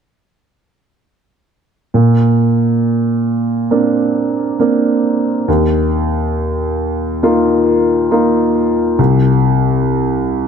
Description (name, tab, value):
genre	pop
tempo	68 BPM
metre	4/4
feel	straight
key	Bb major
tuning	A4 = 440 Hz
part	clear baby grand piano	accompaniment	1.9-10.5 s	C2 to F4	-12 LUFS	equal	none
room	moderate lush hall reverb, RT60 2.7 s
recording	none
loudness	-12 LUFS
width	side -7 dB against mid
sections	1.9-10.5 A section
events	none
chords	1.9 Bbadd9; 5.5 Ebsus2; 9.0 N.C.